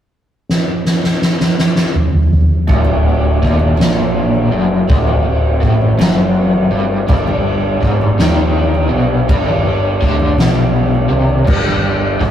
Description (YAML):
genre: psychedelic rock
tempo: 55 BPM (dotted quarters)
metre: 6/8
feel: straight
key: unclear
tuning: A4 = 440 Hz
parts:
  - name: soft-mallet drum kit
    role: drums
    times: 0.5-12.3 s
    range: crash cymbal, kick drum, ride cymbal, snare drum, toms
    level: -14 LUFS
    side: equal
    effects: none
  - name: percussive tonewheel organ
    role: sustained chords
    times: 2.7-12.3 s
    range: G3 to G4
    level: -22 LUFS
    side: right 3 dB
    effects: overdrive, stopped rotary speaker
  - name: crunchy overdriven guitar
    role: riff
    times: 2.7-12.3 s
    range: D2 to Eb3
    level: -17 LUFS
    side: left 1 dB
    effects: tremolo
  - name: fuzz fingered electric bass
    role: bass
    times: 2.7-12.3 s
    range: D1 to Eb2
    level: -17 LUFS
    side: equal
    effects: overdrive
  - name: congas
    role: percussion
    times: 2.7-11.8 s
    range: none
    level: -27 LUFS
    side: equal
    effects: none
room: moderate small room reverb, RT60 0.6 s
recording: rough rehearsal-room recording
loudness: -11 LUFS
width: side -10 dB against mid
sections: 0.5-2.7 A section; 2.7-12.3 B section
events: drum fill 0.5-2.7, 10.6-11.5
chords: 0.5 N.C.; 2.7 D; 7.1 G5